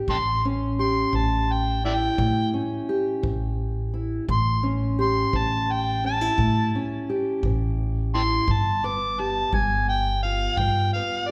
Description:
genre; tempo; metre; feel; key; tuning
acoustic country blues, solo or duo; 57 BPM (dotted quarters); 12/8; straight; unclear; A4 = 440 Hz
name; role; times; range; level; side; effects
fingerpicked steel-string acoustic guitar; accompaniment; 0.0-11.3 s; G2 to G4; -30 LUFS; equal; none
overdriven harmonica; melody; 0.1-11.3 s; D5 to D6; -27 LUFS; equal; none
upright bass; bass; 0.1-10.9 s; G1 to A2; -28 LUFS; equal; none
kick drum; drums; 0.1-10.7 s; none; -32 LUFS; equal; none
room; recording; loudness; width
wet scoring stage reverb, RT60 2.1 s; recorded in a church or concert hall; -24 LUFS; mono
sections
0.0-11.3 A section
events
harmonica solo 0.0-11.3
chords
0.0 A7; 8.5 G7

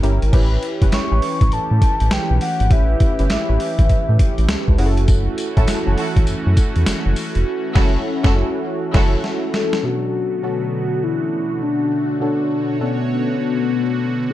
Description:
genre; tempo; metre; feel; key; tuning
R&B, new jack swing; 101 BPM; 4/4; swing 64% on 16ths; B minor; A4 = 439 Hz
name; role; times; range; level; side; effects
warm analog keys; accompaniment; 0.0-14.3 s; B2 to C#5; -24 LUFS; left 1 dB; chorus
round analog bass; bass; 0.0-9.2 s; E#1 to A2; -17 LUFS; equal; none
boom bap sampler-style drum kit; drums; 0.0-9.8 s; crash cymbal, hi-hat, kick drum, snare drum, tambourine; -18 LUFS; equal; none
phased analog pad; sustained chords; 0.7-14.3 s; D3 to C#5; -28 LUFS; right 2 dB; phaser, chorus
soft octave-layered synth lead; melody; 0.9-4.8, 9.6-14.3 s; B3 to C#6; -21 LUFS; left 2 dB; chorus
warm studio string section; stabs; 5.6-9.2 s; E4 to A4; -28 LUFS; right 1 dB; ping-pong delay
room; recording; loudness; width
little or no reverb; dark, warm production; -16 LUFS; side -14 dB against mid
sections
0.3-9.8 A section; 9.8-14.3 B section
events
break 0.0-0.3; band accent 7.5-9.8; drum fill 9.2-9.8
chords
0.3 A7; 4.8 F#m7; 9.8 Bm7

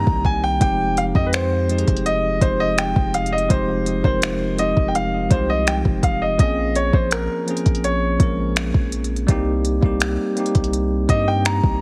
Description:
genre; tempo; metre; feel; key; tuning
contemporary R&B; 83 BPM; 4/4; straight; F minor; A4 = 440 Hz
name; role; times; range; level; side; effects
clear concert grand piano; melody; 0.0-11.8 s; Bb4 to Bb5; -24 LUFS; equal; delay
bell-like tine electric piano; accompaniment; 0.0-11.8 s; Eb3 to Bb4; -26 LUFS; equal; none
long sustained 808-style bass; bass; 0.0-11.8 s; F1 to G2; -26 LUFS; equal; none
smooth R&B drum kit; drums; 0.1-11.8 s; finger snaps, hi-hat, kick drum; -22 LUFS; equal; none
room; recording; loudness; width
digital ambience; heavily compressed radio sound; -19 LUFS; mono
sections
0.0-11.8 A section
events
none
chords
0.0 Cm7; 0.6 Fm7; 6.4 Bbm7; 9.3 Cm7

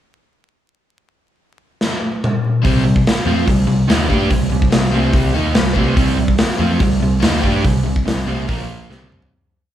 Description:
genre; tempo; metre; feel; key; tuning
hard rock; 144 BPM; 4/4; straight; C minor; A4 = 439 Hz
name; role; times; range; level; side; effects
big rock drum kit; drums; 1.8-9.3 s; hi-hat, kick drum, snare drum, toms; -16 LUFS; equal; none
overdriven semi-hollow guitar; riff; 2.6-9.3 s; Bb2 to G4; -23 LUFS; left 7 dB; none
overdriven semi-hollow guitar; riff; 2.6-9.3 s; Bb2 to G4; -20 LUFS; right 5 dB; spring reverb
picked electric bass; bass; 2.6-9.3 s; Bb1 to G2; -20 LUFS; equal; none
room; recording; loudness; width
moderate large studio reverb, RT60 0.8 s; band playing live in one room, vinyl crackle; -14 LUFS; side -11 dB against mid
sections
1.0-2.6 pickup bar; 2.6-9.3 riff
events
drum fill 1.8-2.6, 8.9-9.3; fade-out 7.6-9.3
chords
1.0 N.C.; 2.6 Cm; 8.5 Bb5; 8.9 C5

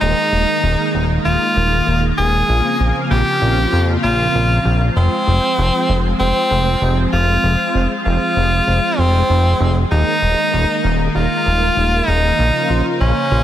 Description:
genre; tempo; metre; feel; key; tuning
synthwave; 97 BPM; 4/4; straight; F minor; A4 = 439 Hz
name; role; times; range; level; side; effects
edgy tenor saxophone; melody; 0.0-13.4 s; C4 to Ab4; -17 LUFS; equal; digital delay
analog string pad; sustained chords; 0.0-13.4 s; Db3 to C5; -20 LUFS; equal; ensemble chorus
chorused synth bass; bass; 0.0-13.4 s; Eb1 to F2; -16 LUFS; equal; none
room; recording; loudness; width
light reverb, studio ambience; dense, heavily limited modern master; -13 LUFS; side -11 dB against mid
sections
0.0-13.4 A section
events
none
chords
0.0 Ebsus4; 2.5 Bbmadd9; 5.0 Fm; 9.9 Ebsus4; 12.4 Bbmadd9

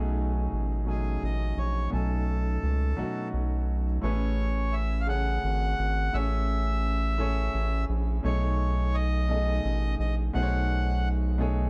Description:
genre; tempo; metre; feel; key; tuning
slow six-eight R&B; 57 BPM (dotted quarters); 6/8; straight; A lydian; A4 = 440 Hz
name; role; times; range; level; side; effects
clear grand piano; accompaniment; 0.0-11.7 s; A2 to G#5; -35 LUFS; equal; none
round analog bass; bass; 0.0-11.7 s; G#1 to C#2; -29 LUFS; equal; none
accordion; melody; 0.9-11.1 s; G#4 to F#5; -36 LUFS; equal; none
room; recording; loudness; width
light reverb; dark, warm production; -28 LUFS; mono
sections
0.0-4.0 A section; 4.0-11.7 B section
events
none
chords
0.0 B13; 4.0 Amaj7; 8.2 B13

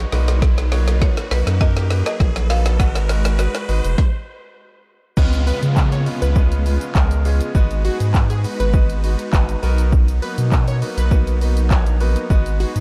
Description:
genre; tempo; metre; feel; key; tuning
dance-pop; 101 BPM; 4/4; straight; unclear; A4 = 440 Hz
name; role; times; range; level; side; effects
clear baby grand piano; accompaniment; 0.0-12.8 s; A#2 to C#5; -30 LUFS; equal; sidechain pumping
supersaw chords; sustained chords; 0.0-12.8 s; C#3 to B4; -34 LUFS; equal; sidechain pumping
saturated sub bass; bass; 0.0-12.8 s; E#1 to C#3; -20 LUFS; equal; sidechain pumping
riser and downlifter; sound effects; 0.0-9.9 s; none; -36 LUFS; equal; none
deep house drum kit; drums; 0.1-12.8 s; crash cymbal, handclaps, hi-hat, kick drum, shaker, snare drum; -21 LUFS; equal; none
buzzing marimba with hard mallets; melody; 1.0-4.5 s; B4 to F#5; -31 LUFS; equal; tape echo
plucky unison lead; melody; 5.5-12.7 s; F#4 to C#5; -31 LUFS; equal; sidechain pumping, tape echo
room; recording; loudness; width
digital ambience; dark, warm production; -18 LUFS; mono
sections
0.0-5.2 A section; 5.2-12.8 B section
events
build-up 0.0-5.2; drum fill 0.0-4.0; riser 0.0-5.2; stop 4.0-5.2; drop 5.2-12.8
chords
0.1 Bmaj7; 2.8 G#m7; 4.0 N.C.; 5.2 C#7; 7.5 G#m7; 9.6 Bmaj7; 12.3 G#m7

